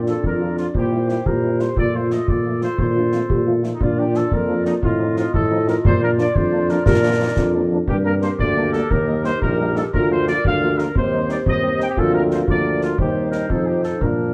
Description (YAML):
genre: military-style march for wind band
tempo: 118 BPM (dotted quarters)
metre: 6/8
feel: straight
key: Bb major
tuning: A4 = 440 Hz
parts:
  - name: dark euphonium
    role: second line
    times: 0.0-14.3 s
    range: Bb3 to G4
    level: -31 LUFS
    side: equal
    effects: none
  - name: warm woodwind section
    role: second line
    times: 0.0-14.3 s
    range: D4 to Eb5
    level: -29 LUFS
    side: equal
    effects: none
  - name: clear tuba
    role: bass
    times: 0.0-14.3 s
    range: Bb1 to Bb2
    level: -23 LUFS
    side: equal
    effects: none
  - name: mellow trumpet section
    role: melody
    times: 0.1-14.3 s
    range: Eb4 to G5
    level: -28 LUFS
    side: equal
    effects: none
  - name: mellow French horn section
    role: accompaniment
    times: 0.1-14.3 s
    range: F3 to F4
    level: -29 LUFS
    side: equal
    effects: none
  - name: concert snare drum and concert bass drum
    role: drums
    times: 0.1-14.1 s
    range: none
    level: -26 LUFS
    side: equal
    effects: none
room: light reverb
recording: heard from further back in the room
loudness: -19 LUFS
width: mono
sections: 0.0-14.3 A section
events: none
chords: 0.0 Bb; 0.7 C7/Bb; 1.8 F/Bb; 3.8 Bb; 4.8 F7/A; 5.8 Bb; 7.9 Gm; 8.9 Eb; 9.9 Bb/D; 10.9 Cm/Eb; 12.0 Bb/D; 13.0 Cm/Eb; 13.5 F5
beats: 0.24 | 0.75 1.26 | 1.77 2.28 | 2.79 3.30 | 3.81 4.32 | 4.83 5.34 | 5.85 6.36 | 6.87 7.38 | 7.89 8.40 | 8.91 9.42 | 9.93 10.44 | 10.95 11.46 | 11.97 12.48 | 12.99 13.50 | 14.01